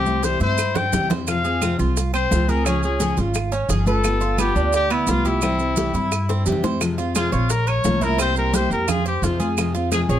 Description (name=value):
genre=latin, Cuban son and guajira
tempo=174 BPM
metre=4/4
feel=straight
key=F minor from 6.8 s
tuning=A4 = 437 Hz
part: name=warm trumpet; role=melody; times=0.0-10.2 s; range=E4 to G5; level=-23 LUFS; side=left 3 dB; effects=none
part: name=fingerpicked steel-string acoustic guitar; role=accompaniment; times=0.0-10.2 s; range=C3 to G4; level=-25 LUFS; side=left 4 dB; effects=none
part: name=Cuban tres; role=arpeggios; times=0.0-10.2 s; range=B3 to Db5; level=-26 LUFS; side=right 5 dB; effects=none
part: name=upright bass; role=bass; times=0.0-10.2 s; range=G1 to G2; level=-23 LUFS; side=equal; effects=none
part: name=bongos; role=percussion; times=0.1-10.1 s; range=none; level=-31 LUFS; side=left 5 dB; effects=none
part: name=congas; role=percussion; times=0.1-10.2 s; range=none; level=-28 LUFS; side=right 1 dB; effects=none
part: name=maracas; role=percussion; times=0.1-10.2 s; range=none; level=-31 LUFS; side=right 7 dB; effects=none
part: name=claves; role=percussion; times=0.6-10.1 s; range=none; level=-30 LUFS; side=right 8 dB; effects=none
room=light reverb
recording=close, detailed microphones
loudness=-18 LUFS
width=side -11 dB against mid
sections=0.0-6.8 A section; 6.8-10.2 B section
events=drum fill 0.0-1.3, 6.3-6.8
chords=0.0 C; 1.3 Fm; 2.7 Db; 4.0 G7; 5.4 C; 6.8 Fm; 7.5 Bbm; 8.2 C7; 8.9 Fm